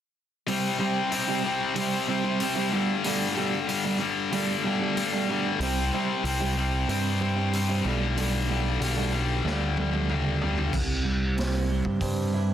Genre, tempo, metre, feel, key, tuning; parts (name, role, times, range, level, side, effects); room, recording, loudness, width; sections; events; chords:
quiet-loud alternative rock; 94 BPM; 4/4; straight; C major; A4 = 440 Hz
electric guitar through a small old amp; arpeggios; 0.5-12.5 s; B2 to E4; -30 LUFS; right 4 dB; harmonic tremolo
tight distorted guitar; riff; 0.5-10.7 s; G2 to C4; -27 LUFS; left 4 dB; distortion
raw garage drum kit; drums; 0.5-12.2 s; crash cymbal, hi-hat, kick drum, snare drum, toms; -34 LUFS; equal
growling picked electric bass; bass; 5.6-12.5 s; B1 to G2; -27 LUFS; equal; overdrive
light reverb, studio ambience; dense, heavily limited modern master; -24 LUFS; side -10 dB against mid
0.5-10.7 A section; 10.7-12.5 B section
drum fill 9.4-10.7
0.5 C; 2.7 Gadd9; 5.6 C; 7.8 Gadd9/B; 10.7 C5